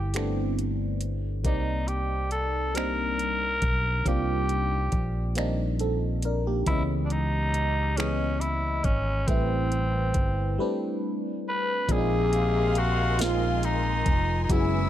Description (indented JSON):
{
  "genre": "slow six-eight R&B",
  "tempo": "46 BPM (dotted quarters)",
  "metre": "6/8",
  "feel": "straight",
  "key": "unclear",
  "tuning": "A4 = 439 Hz",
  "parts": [
    { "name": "breathy tenor saxophone", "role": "melody", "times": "0.0-14.9 s", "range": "C4 to B4", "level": "-29 LUFS", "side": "equal", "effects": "slapback echo" },
    { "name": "FM electric piano", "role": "accompaniment", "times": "0.0-14.9 s", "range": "Fb3 to Eb5", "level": "-30 LUFS", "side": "equal", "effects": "chorus, phaser" },
    { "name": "fingered electric bass", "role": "bass", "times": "0.0-14.9 s", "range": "F1 to Db2", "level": "-28 LUFS", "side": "equal", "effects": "none" },
    { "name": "smooth R&B drum kit", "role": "drums", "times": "0.1-14.7 s", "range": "finger snaps, hi-hat, kick drum, snare drum", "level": "-28 LUFS", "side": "equal", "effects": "none" },
    { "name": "warm symphonic string section", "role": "sustained chords", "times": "11.9-14.9 s", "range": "Bb4 to Fb6", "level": "-36 LUFS", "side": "left 3 dB", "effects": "none" },
    { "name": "warm horn section", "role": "stabs", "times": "11.9-14.9 s", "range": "C3 to F5", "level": "-33 LUFS", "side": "left 5 dB", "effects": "none" }
  ],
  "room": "little or no reverb",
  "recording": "none",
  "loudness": "-24 LUFS",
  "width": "side -12 dB against mid",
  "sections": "0.0-11.9 A section; 11.9-14.9 B section",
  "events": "break 10.6-11.9",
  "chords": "0.0 Am9; 1.5 Cm9; 6.7 Dbm9; 9.3 Am9; 11.9 Bb9sus4"
}